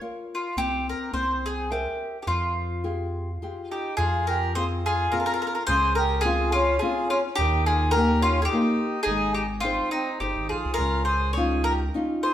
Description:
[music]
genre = italian folk, Italian serenade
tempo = 106 BPM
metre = 3/4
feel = swing 54% on 8ths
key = F minor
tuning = A4 = 439 Hz
[part]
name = nylon-string guitar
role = accompaniment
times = 0.0-12.3 s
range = Db3 to E5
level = -29 LUFS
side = left 2 dB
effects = none
[part]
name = mandolin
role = melody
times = 0.3-12.3 s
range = Eb4 to Db5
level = -25 LUFS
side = left 1 dB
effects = none
[part]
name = round analog bass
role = bass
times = 0.6-11.9 s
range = G1 to F2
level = -28 LUFS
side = right 1 dB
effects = none
[part]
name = accordion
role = second line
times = 3.7-12.3 s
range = C4 to Ab4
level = -30 LUFS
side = right 2 dB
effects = none
[sound]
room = wet stone room reverb, RT60 1.3 s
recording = band playing live in one room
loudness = -22 LUFS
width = side -11 dB against mid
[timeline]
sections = 0.0-4.0 A section; 4.0-12.3 A section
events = none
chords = 0.0 Bbm; 0.6 C5; 1.1 C7; 2.3 Fmadd9; 4.0 Fm; 5.7 Dbmaj7; 7.4 Eb; 9.1 Ab; 10.8 Dbadd9

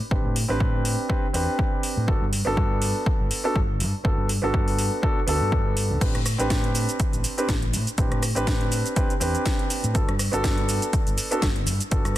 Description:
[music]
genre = nu-disco, nu disco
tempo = 122 BPM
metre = 4/4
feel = swing 56% on 16ths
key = A dorian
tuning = A4 = 441 Hz
[part]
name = warm grand piano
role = accompaniment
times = 0.1-12.1 s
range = B3 to B4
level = -27 LUFS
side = right 1 dB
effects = dub echo
[part]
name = overdriven fingered electric bass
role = bass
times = 0.1-12.2 s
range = G1 to A2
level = -26 LUFS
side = equal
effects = none
[part]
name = electronic kick drum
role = drums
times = 0.1-12.0 s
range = none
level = -25 LUFS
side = equal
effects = overdrive
[part]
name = house drum kit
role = drums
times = 0.4-12.2 s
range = cabasa, crash cymbal, hi-hat, rim click, snare drum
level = -29 LUFS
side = equal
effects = overdrive
[sound]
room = digital ambience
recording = dense, heavily limited modern master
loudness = -21 LUFS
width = side -14 dB against mid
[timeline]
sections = 0.0-12.2 A section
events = none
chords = 0.0 Am11; 2.1 Gmaj9; 6.0 Am11; 9.9 Gmaj9

